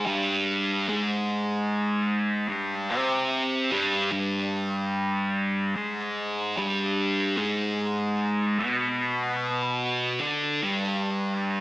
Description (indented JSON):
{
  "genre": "rock",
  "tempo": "74 BPM",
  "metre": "4/4",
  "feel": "straight",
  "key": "unclear",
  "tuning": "A4 = 441 Hz",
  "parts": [
    { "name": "thick fuzz guitar", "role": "solo", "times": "0.0-11.6 s", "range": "G2 to D4", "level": "-24 LUFS", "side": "equal", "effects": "distortion, phaser, slapback echo" }
  ],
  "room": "moderate plate reverb, RT60 3.2 s",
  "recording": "small speaker sound",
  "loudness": "-24 LUFS",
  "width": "side -20 dB against mid",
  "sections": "0.0-11.6 A section",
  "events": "none",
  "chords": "0.0 G",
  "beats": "0.07 | 0.88 1.69 2.50 3.31 | 4.12 4.93 5.75 6.56 | 7.37 8.18 9.00 9.81 | 10.62 11.44"
}